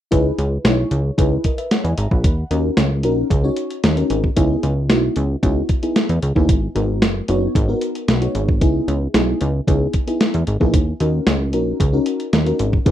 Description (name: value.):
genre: early-eighties boogie funk.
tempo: 113 BPM.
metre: 4/4.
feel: straight.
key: C# dorian.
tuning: A4 = 440 Hz.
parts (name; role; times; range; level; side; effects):
FM electric piano with soft pad layer; accompaniment; 0.1-12.9 s; B3 to B5; -21 LUFS; left 1 dB; chorus, plate reverb.
plucky analog bass; bass; 0.1-12.9 s; F#1 to E2; -19 LUFS; equal; none.
crisp 8-bit digital drum machine; drums; 0.1-12.9 s; hi-hat, kick drum, snare drum; -18 LUFS; equal; none.
room: moderate small room reverb, RT60 0.5 s.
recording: rough home demo mix.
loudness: -16 LUFS.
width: side -11 dB against mid.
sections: 0.1-12.9 A section.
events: none.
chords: 0.1 C#m7; 2.2 D#m7; 4.4 C#m7; 6.5 G#m7; 8.6 C#m7; 10.7 D#m7.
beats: | 0.12 0.65 1.18 1.71 | 2.24 2.77 3.31 3.84 | 4.37 4.90 5.43 5.96 | 6.49 7.02 7.55 8.08 | 8.62 9.15 9.68 10.21 | 10.74 11.27 11.80 12.33 | 12.86.